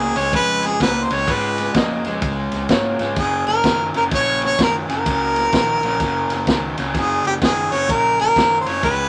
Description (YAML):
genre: electric blues shuffle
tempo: 127 BPM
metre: 4/4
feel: swing 63% on 8ths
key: unclear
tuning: A4 = 438 Hz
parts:
  - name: clear harmonica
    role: melody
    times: 0.0-9.1 s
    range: G4 to Db5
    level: -21 LUFS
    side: equal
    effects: none
  - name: crunchy overdriven guitar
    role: riff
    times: 0.0-9.1 s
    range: Gb2 to Bb3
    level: -26 LUFS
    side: equal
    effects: none
  - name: vintage muted fingered electric bass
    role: bass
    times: 0.0-9.1 s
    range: Gb1 to Ab2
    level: -34 LUFS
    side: equal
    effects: none
  - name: vintage drum kit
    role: drums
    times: 0.2-9.0 s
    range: kick drum, ride cymbal, snare drum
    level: -25 LUFS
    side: equal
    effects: none
  - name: clear upright piano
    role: second line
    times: 1.7-3.1 s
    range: F4 to Eb5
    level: -28 LUFS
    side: equal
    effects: none
room: moderate large studio reverb, RT60 0.9 s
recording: none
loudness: -19 LUFS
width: mono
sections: 0.0-9.1 A section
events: none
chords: 0.0 Db7; 3.2 Gb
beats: 0.33 0.80 | 1.27 1.75 2.22 2.69 | 3.16 3.64 4.11 4.58 | 5.05 5.53 6.00 6.47 | 6.95 7.42 7.89 8.36 | 8.83